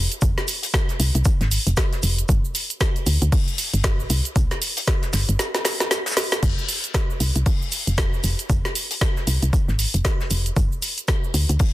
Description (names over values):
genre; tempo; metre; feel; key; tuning
deep house; 116 BPM; 4/4; swing 59% on 16ths; F dorian; A4 = 438 Hz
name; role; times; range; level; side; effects
woody FM bass; bass; 0.0-11.6 s; F1 to D2; -21 LUFS; equal; sidechain pumping
deep house drum kit; drums; 0.1-11.7 s; cabasa, crash cymbal, hi-hat, snare drum; -24 LUFS; equal; none
electronic kick drum; drums; 0.2-11.7 s; none; -21 LUFS; equal; none
soft brush drum kit; drums; 0.2-11.7 s; hi-hat, shaker, snare drum; -33 LUFS; left 3 dB; sidechain pumping on hats, high-pass filter on hats, soft clipping on snare, high-pass filter on snare, sidechain pumping on perc, high-pass filter on perc, high-pass filter on room
room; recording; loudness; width
little or no reverb; dense, heavily limited modern master; -19 LUFS; side -16 dB against mid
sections
0.0-6.4 A section; 6.4-11.7 B section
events
drop 0.0-6.4; drum fill 5.4-6.4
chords
none